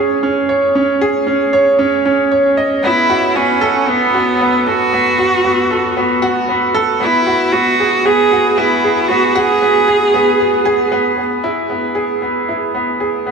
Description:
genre	electronica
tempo	115 BPM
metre	4/4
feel	straight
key	unclear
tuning	A4 = 441 Hz
part	bright baby grand piano	riff	0.0-13.3 s	B3 to D#5	-14 LUFS	right 1 dB	digital delay
part	clear viola	melody	2.8-10.9 s	B3 to G#4	-14 LUFS	right 3 dB	digital delay
room	wet huge ambient reverb, RT60 7.0 s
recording	small room ambience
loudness	-12 LUFS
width	side -5 dB against mid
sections	0.0-11.2 A section; 11.2-13.3 B section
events	none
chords	0.0 G#sus4; 2.8 B7(no3); 7.0 Eadd9; 11.2 E/B

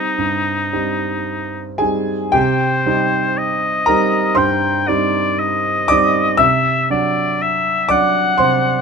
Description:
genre	classical, romantic duo for oboe and grand piano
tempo	54-61 BPM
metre	4/4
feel	rubato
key	C minor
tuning	A4 = 439 Hz
part	clear oboe	melody	0.0-8.8 s	Eb4 to G5	-18 LUFS	left 3 dB	none
part	warm concert grand piano	accompaniment	0.0-8.8 s	G2 to E6	-17 LUFS	right 2 dB	none
room	light reverb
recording	close, detailed microphones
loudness	-14 LUFS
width	side -5 dB against mid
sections	0.0-2.4 A section; 2.4-8.8 A section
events	none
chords	0.0 Cm; 6.4 D7/C

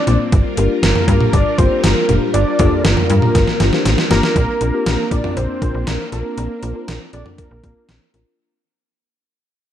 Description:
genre	synth-pop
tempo	119 BPM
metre	4/4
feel	straight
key	Bb major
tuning	A4 = 440 Hz
part	fat analog lead	melody	0.0-8.1 s	Bb4 to D5	-21 LUFS	right 1 dB	chorus, tape echo
part	string machine, violas	sustained chords	0.0-8.4 s	G3 to Bb4	-24 LUFS	equal	ensemble chorus
part	muted felt-like synth keys	accompaniment	0.1-8.3 s	Bb3 to C5	-22 LUFS	left 4 dB	chorus
part	slap-like FM bass	bass	0.1-8.2 s	F1 to G2	-18 LUFS	equal	none
part	gated 80s digital drum machine	drums	0.1-8.3 s	cowbell, hi-hat, kick drum, snare drum, toms	-17 LUFS	equal	gated reverb, gated reverb snare, overdrive, tape echo
room	light reverb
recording	echo-heavy mix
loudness	-13 LUFS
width	side -10 dB against mid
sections	0.0-4.4 A section; 4.4-8.4 B section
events	drum fill 3.4-4.4; fade-out 4.4-8.4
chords	0.3 Gm7; 4.4 Bbadd9

